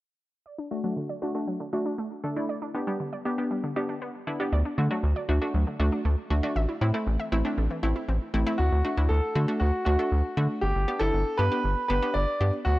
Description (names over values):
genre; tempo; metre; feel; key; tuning
synth-pop; 118 BPM; 4/4; straight; D mixolydian; A4 = 439 Hz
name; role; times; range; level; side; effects
analog pluck; arpeggios; 0.5-8.6 s; D3 to E5; -34 LUFS; equal; chorus, low-pass filter, analog delay
analog pluck; accompaniment; 0.7-12.6 s; A3 to A4; -30 LUFS; equal; chorus, low-pass filter
rubbery square bass; bass; 4.5-12.8 s; G1 to D3; -24 LUFS; equal; none
clear grand piano; melody; 8.6-12.8 s; F#4 to D5; -28 LUFS; equal; none
room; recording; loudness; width
light reverb; dry, gritty hardware recording; -24 LUFS; side -17 dB against mid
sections
0.5-8.6 A section; 8.6-12.8 B section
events
filter sweep 0.5-8.6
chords
0.5 D; 2.5 G; 4.5 D; 6.6 Am; 8.6 D; 10.6 G